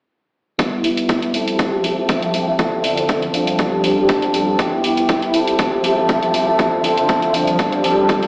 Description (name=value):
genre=filtered disco house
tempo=120 BPM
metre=4/4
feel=swing 54% on 16ths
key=unclear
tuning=A4 = 441 Hz
part: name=phased string machine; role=sustained chords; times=0.6-8.3 s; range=D3 to C6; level=-22 LUFS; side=equal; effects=ensemble chorus, phaser, sidechain pumping, low-pass filter
part: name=electric guitar with an envelope filter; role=riff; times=0.6-8.3 s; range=F3 to A4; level=-22 LUFS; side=equal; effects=sidechain pumping, low-pass filter
part: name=electronic hi-hat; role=drums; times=0.6-8.3 s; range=none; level=-27 LUFS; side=equal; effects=sidechain pumping on hats
part: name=electronic kick drum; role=drums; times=0.6-8.2 s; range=none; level=-22 LUFS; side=equal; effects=high-pass filter on kick
part: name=tambourine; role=percussion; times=0.6-8.3 s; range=none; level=barely audible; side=none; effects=none
room=moderate plate reverb, RT60 1.8 s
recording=played on a big sound system in a bare room, stone room reverb, AM radio sound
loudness=-18 LUFS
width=mono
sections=0.6-8.3 A section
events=filter sweep 0.6-8.3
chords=0.6 G6; 1.3 Fmaj9; 2.6 Dm9; 3.3 G9sus4; 4.6 G6; 5.3 Fmaj9; 6.6 Dm9; 7.3 G9sus4